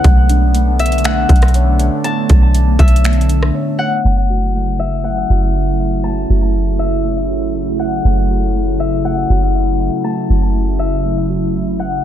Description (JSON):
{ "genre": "hip hop, atmospheric cloud-rap", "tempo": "120 BPM", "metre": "4/4", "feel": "half-time", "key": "F# minor", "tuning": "A4 = 441 Hz", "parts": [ { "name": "concert harp", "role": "melody", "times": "0.0-12.0 s", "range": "E5 to A5", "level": "-22 LUFS", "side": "left 7 dB", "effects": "analog delay" }, { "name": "warbly tape-like pad", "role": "sustained chords", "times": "0.0-12.0 s", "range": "C#3 to E4", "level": "-19 LUFS", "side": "equal", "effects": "chorus, built-in reverb, phaser, sidechain pumping" }, { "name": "muted felt-like synth keys", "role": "arpeggios", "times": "0.0-12.0 s", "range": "A3 to E5", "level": "-24 LUFS", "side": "right 5 dB", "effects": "chorus, analog delay" }, { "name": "soft 808-style bass", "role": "bass", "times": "0.0-12.0 s", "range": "F#1 to B1", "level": "-14 LUFS", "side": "equal", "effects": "none" }, { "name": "trap drum kit", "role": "drums", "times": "0.0-3.5 s", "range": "finger snaps, hi-hat, kick drum, rim click", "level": "-16 LUFS", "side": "equal", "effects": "none" } ], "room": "digital ambience", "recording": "echo-heavy mix, low-pass filter", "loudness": "-12 LUFS", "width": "side -11 dB against mid", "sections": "0.0-4.0 A section; 4.0-12.0 B section", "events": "break 3.5-4.0; filter sweep 4.0-12.0", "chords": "0.0 Bm9; 4.0 F#m7" }